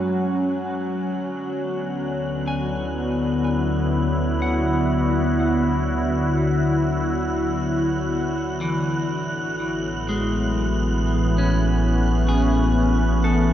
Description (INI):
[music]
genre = ambient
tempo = free time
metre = none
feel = none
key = unclear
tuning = A4 = 440 Hz
[part]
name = evolving wavetable pad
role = sustained chords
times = 0.0-13.5 s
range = A2 to G#5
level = -22 LUFS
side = equal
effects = chorus, built-in reverb, shimmer reverb
[part]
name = electric guitar at the edge of break-up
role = arpeggios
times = 0.0-13.5 s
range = E3 to G#5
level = -31 LUFS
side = left 1 dB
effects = spring reverb, tape echo
[part]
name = deep rumbling drone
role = bass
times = 0.0-13.5 s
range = A1 to F#2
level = -25 LUFS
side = equal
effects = built-in reverb
[part]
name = bowed-like drone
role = drone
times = 0.0-13.5 s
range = F#3 to F#4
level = -31 LUFS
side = left 1 dB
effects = built-in reverb
[part]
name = wind-like tuned noise texture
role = texture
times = 0.0-13.5 s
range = F#6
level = -35 LUFS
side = right 2 dB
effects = built-in reverb, shimmer reverb
[sound]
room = wet huge ambient reverb, RT60 7.5 s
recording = cassette tape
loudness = -20 LUFS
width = side -11 dB against mid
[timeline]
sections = 0.0-13.5 A section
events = fade-in on clean electric guitar 0.0-13.5; fade-in on synth texture 0.0-13.5; fade-out on synth drone 0.0-13.5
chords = 0.0 F#madd9; 1.0 D6; 8.8 A6